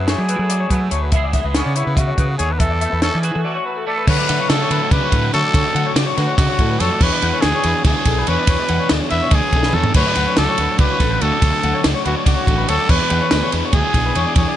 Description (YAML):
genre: math rock and midwest emo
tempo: 286 BPM (eighths)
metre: 7/8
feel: straight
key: unclear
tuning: A4 = 441 Hz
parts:
  - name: twangy electric guitar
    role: accompaniment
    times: 0.0-5.5 s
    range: F#2 to G#4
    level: -28 LUFS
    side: right 7 dB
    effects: ensemble chorus
  - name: electric guitar through a small old amp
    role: arpeggios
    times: 0.0-14.6 s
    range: G#4 to F#5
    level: -25 LUFS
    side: left 10 dB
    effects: none
  - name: fuzz fingered electric bass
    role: bass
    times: 0.0-14.4 s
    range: A1 to F#3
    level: -21 LUFS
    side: equal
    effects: overdrive
  - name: growling trumpet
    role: melody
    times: 0.1-14.6 s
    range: C#4 to E5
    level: -21 LUFS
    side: equal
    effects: none
  - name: compact cocktail drum kit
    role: drums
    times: 0.1-14.5 s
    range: crash cymbal, hi-hat, kick drum, ride cymbal, snare drum, toms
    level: -18 LUFS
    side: equal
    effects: none
  - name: crunchy overdriven guitar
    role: riff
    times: 4.1-14.6 s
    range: D3 to G#4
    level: -23 LUFS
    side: right 1 dB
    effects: none
room: little or no reverb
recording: nothing above 10.8 kHz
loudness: -14 LUFS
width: side -11 dB against mid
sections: 0.0-4.1 A section; 4.1-14.6 B section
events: break 3.4-4.1; drum fill 9.6-10.0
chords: 0.0 F#m11; 1.1 C#m7; 2.6 E13sus4; 4.1 Dmaj7; 7.0 E7; 10.0 Dmaj7; 12.9 E7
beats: 0.08 0.29 0.50 0.71 0.92 | 1.13 1.34 1.55 1.76 1.98 2.19 2.40 | 2.61 2.82 3.03 3.24 3.45 3.66 3.87 | 4.08 4.29 4.50 4.71 4.92 5.13 5.33 | 5.54 5.75 5.96 6.17 6.38 6.59 6.80 | 7.01 7.22 7.43 7.64 7.85 8.06 8.27 | 8.48 8.69 8.90 9.11 9.32 9.54 9.74 | 9.96 10.17 10.38 10.59 10.80 11.01 11.22 | 11.43 11.64 11.85 12.06 12.27 12.48 12.69 | 12.90 13.11 13.32 13.53 13.74 13.95 14.15 | 14.36